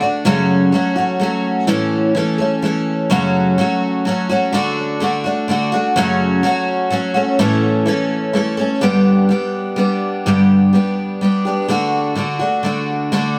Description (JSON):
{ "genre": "rock", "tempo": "126 BPM", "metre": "3/4", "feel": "straight", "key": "unclear", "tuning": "A4 = 438 Hz", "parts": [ { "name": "picked twelve-string acoustic guitar", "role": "solo", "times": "0.0-13.4 s", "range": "F#2 to A4", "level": "-17 LUFS", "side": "equal", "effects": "none" } ], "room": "moderate studio reverb, RT60 0.9 s", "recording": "none", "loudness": "-17 LUFS", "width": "mono", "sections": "0.0-8.8 A section; 8.8-13.4 B section", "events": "none", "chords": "0.2 F#m; 1.7 A; 3.1 F#m; 4.5 D; 6.0 F#m; 7.4 A; 8.8 G; 11.7 D" }